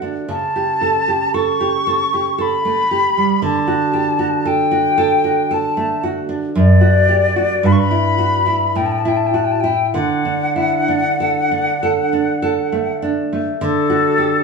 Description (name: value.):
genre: romantic duo for flute and classical guitar.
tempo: 47-59 BPM.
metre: 3/4.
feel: rubato.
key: D major.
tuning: A4 = 442 Hz.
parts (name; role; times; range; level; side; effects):
nylon-string guitar; accompaniment; 0.0-14.4 s; F#2 to A4; -17 LUFS; right 3 dB; none.
bright silver concert flute; melody; 0.3-14.4 s; A4 to C#6; -17 LUFS; left 4 dB; none.
room: wet large studio reverb, RT60 1.3 s.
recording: band playing live in one room, small room ambience.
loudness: -14 LUFS.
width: side -4 dB against mid.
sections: 0.0-13.6 A section.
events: none.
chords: 0.3 A7/C#; 3.4 D; 6.6 D/F#; 7.6 Em/G; 8.8 A5; 9.9 D.